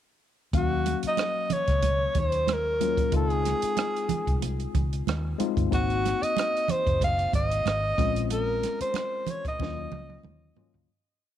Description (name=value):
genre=lush 1970s-style soul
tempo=93 BPM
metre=4/4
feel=swing 54% on 16ths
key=Eb dorian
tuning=A4 = 438 Hz
part: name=tine electric piano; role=accompaniment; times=0.5-10.9 s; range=Gb3 to F5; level=-33 LUFS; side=left 15 dB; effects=none
part: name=vintage muted fingered electric bass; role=bass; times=0.5-10.9 s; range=Gb1 to Eb2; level=-30 LUFS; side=equal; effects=none
part: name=compact cocktail drum kit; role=drums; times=0.5-10.9 s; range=hi-hat, kick drum, rim click, snare drum, toms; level=-30 LUFS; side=right 2 dB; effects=none
part: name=breathy alto saxophone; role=melody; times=0.6-10.2 s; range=Gb4 to F5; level=-27 LUFS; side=equal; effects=tape echo
part: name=congas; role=percussion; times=0.9-10.7 s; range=none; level=-34 LUFS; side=right 14 dB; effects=none
room=light reverb, studio reverb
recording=1960s-style stereo with parts hard left and right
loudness=-24 LUFS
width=side -11 dB against mid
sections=0.5-10.9 A section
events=fade-out 8.3-10.9; drum fill 9.6-10.9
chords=0.5 Ebm7; 3.1 Dbmaj7; 5.7 Ab7; 8.0 Bbm7; 9.6 Ebm7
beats=| 0.54 1.18 1.83 2.48 | 3.13 3.77 4.42 5.07 | 5.71 6.36 7.01 7.66 | 8.30 8.95 9.59 10.24